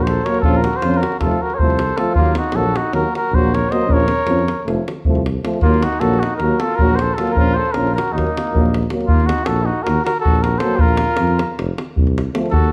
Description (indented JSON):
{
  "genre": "balkan folk, Balkan brass band",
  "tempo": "312 BPM (eighths)",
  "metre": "9/8",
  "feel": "straight",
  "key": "Eb dorian sharp4",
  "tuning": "A4 = 440 Hz",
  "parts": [
    { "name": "cornet with cup mute", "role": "melody", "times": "0.0-12.7 s", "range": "Eb4 to Eb5", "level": "-23 LUFS", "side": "equal", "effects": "none" },
    { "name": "mellow trumpet", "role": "second line", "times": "0.0-12.7 s", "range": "Bb3 to C5", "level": "-27 LUFS", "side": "equal", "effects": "none" },
    { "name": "mellow French horn", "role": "accompaniment", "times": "0.0-12.5 s", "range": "A3 to Db4", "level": "-27 LUFS", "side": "equal", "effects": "none" },
    { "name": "warm euphonium", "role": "accompaniment", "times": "0.0-12.5 s", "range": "F3 to Gb3", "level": "-28 LUFS", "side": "equal", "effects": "none" },
    { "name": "mellow tuba", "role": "bass", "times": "0.0-12.7 s", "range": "F1 to F2", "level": "-23 LUFS", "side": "equal", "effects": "none" },
    { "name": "davul", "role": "percussion", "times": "0.1-12.7 s", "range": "none", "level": "-22 LUFS", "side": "equal", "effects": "none" }
  ],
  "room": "moderate recital hall reverb, RT60 1.6 s",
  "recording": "dark, warm production",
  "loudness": "-17 LUFS",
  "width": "mono",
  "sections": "0.0-9.1 A section; 9.1-12.7 A section",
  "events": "none",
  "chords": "0.4 Bbm; 1.2 F; 2.2 Ebm; 3.9 Bbm; 4.7 F; 5.6 Ebm; 7.4 Bbm; 8.1 Ebm; 10.8 Bb5; 11.6 F"
}